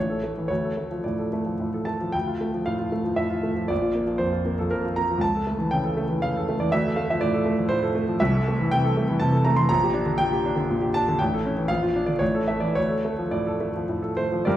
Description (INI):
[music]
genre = classical, romantic character piece for solo piano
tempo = 103-124 BPM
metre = 3/4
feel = rubato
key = D minor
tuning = A4 = 440 Hz
[part]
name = clear baby grand piano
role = solo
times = 0.0-14.6 s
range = A1 to C6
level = -22 LUFS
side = equal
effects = none
[sound]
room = wet recital hall reverb, RT60 1.3 s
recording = heard from further back in the room, vinyl crackle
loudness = -22 LUFS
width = side -12 dB against mid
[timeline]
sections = 0.0-2.1 A section; 2.1-14.5 A section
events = none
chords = 0.5 Dm; 3.7 Bb; 5.2 A/C#; 6.7 Dm; 8.2 Am/C; 9.7 Gm/Bb; 11.2 A; 11.7 Bb; 12.2 A; 12.8 Dm